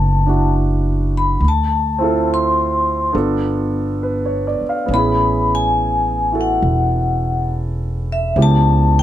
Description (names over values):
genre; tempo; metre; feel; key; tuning
jazz ballad; 69 BPM; 4/4; swing 68% on 8ths; unclear; A4 = 443 Hz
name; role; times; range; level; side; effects
vibraphone with medium hard mallets; melody; 0.0-9.0 s; E5 to C6; -18 LUFS; left 3 dB; plate reverb
warm grand piano; accompaniment; 0.0-9.0 s; B3 to F5; -20 LUFS; right 3 dB; none
upright bass; bass; 0.0-9.0 s; E1 to D2; -18 LUFS; equal; none
room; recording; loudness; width
light reverb; none; -15 LUFS; side -12 dB against mid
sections
0.0-9.0 A section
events
none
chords
0.0 Bm7; 1.4 Dm7; 3.1 G9; 4.9 Amaj9; 8.4 C#m7b5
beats
0.53 | 1.40 2.27 3.14 4.01 | 4.89 5.76 6.62 7.49 | 8.36